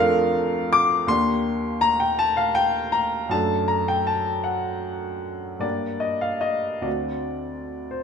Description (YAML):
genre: classical, romantic nocturne for solo piano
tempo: 44-55 BPM (dotted quarters)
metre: 12/8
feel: rubato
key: unclear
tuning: A4 = 439 Hz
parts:
  - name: warm baby grand piano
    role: solo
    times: 0.0-8.0 s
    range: D2 to D6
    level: -21 LUFS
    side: left 1 dB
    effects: none
room: wet recital hall reverb, RT60 1.4 s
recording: minimal, uncompressed stereo recording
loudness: -21 LUFS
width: side -6 dB against mid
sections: 0.0-8.0 A section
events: none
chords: 0.0 Dm/F; 1.1 Ebmaj7; 3.3 D/F#; 5.6 Gm; 6.9 D7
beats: | 1.09 2.20 3.31 4.47 | 5.64 6.86